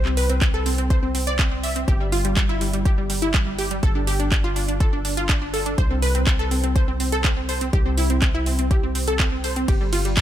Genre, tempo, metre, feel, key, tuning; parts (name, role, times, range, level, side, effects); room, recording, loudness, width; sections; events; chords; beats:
progressive house; 123 BPM; 4/4; straight; A4 = 438 Hz
tight sequencer bass; bass; 0.0-10.2 s; G1 to C2; -24 LUFS; equal; sidechain pumping
wide unison pluck; arpeggios; 0.1-10.2 s; G3 to E5; -24 LUFS; equal; sidechain pumping, ping-pong delay
house drum kit; drums; 0.1-10.2 s; handclaps, hi-hat, ride cymbal; -27 LUFS; right 2 dB; sidechain pumping on hats, sidechain pumping on cymbals
electronic kick drum; drums; 0.4-10.2 s; -20 LUFS; equal
little or no reverb; -19 LUFS; side -11 dB against mid
0.0-10.2 A section
0.0 N.C.; 1.9 G5; 5.8 N.C.; 9.7 G5
0.42 0.90 1.39 | 1.88 2.37 2.85 3.34 | 3.83 4.32 4.81 5.29 | 5.78 6.27 6.76 7.25 | 7.73 8.22 8.71 9.20 | 9.68 10.17